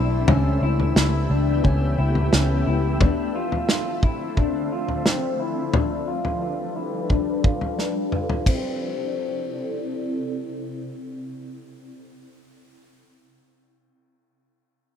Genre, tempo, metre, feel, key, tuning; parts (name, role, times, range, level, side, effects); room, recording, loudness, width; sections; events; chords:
dream pop; 88 BPM; 4/4; straight; C major; A4 = 440 Hz
shimmering ambient pad; sustained chords; 0.0-11.9 s; C3 to E5; -29 LUFS; equal; chorus, built-in reverb, low-pass filter
electric guitar through a small old amp; arpeggios; 0.0-12.5 s; C4 to C5; -27 LUFS; left 4 dB; wide subtle chorus, low-pass filter, ping-pong delay
vintage muted picked electric bass; bass; 0.0-3.0 s; B1 to C#2; -21 LUFS; equal
loose indie drum kit; drums; 0.3-8.6 s; kick drum, ride cymbal, snare drum, toms; -21 LUFS; equal
light reverb, small room ambience; rough home demo mix; -20 LUFS; side -8 dB against mid
0.0-8.5 A section; 8.5-11.2 B section
filter sweep 0.0-8.5; drum fill 7.8-8.5
0.3 A7/C#; 3.0 Dm7; 5.7 G7; 8.5 C6